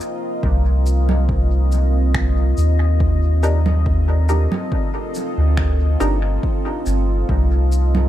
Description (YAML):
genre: ambient dub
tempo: 70 BPM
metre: 4/4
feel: straight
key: C dorian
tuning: A4 = 440 Hz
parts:
  - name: deep dark ambient pad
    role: sustained chords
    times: 0.0-8.1 s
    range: C4 to Eb5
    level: -24 LUFS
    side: equal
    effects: chorus, built-in reverb
  - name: electronic shaker, congas and finger snaps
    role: drums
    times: 0.0-8.1 s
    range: none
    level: -27 LUFS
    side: right 3 dB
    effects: overdrive, studio reverb, dub echo
  - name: soft dub sub bass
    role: bass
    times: 0.4-8.1 s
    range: G1 to Eb2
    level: -16 LUFS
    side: equal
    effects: none
  - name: electronic kick drum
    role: drums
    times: 0.4-7.5 s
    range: none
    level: -23 LUFS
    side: equal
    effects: studio reverb
  - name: filtered dub chord stab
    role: stabs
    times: 3.4-6.2 s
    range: D4 to Bb4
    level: -27 LUFS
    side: equal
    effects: wide subtle chorus, dub echo
room: little or no reverb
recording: echo-heavy mix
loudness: -16 LUFS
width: side -13 dB against mid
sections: 0.0-8.1 A section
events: none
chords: 0.0 Cm9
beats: | 0.43 1.29 2.15 3.01 | 3.86 4.72 5.58 6.43 | 7.29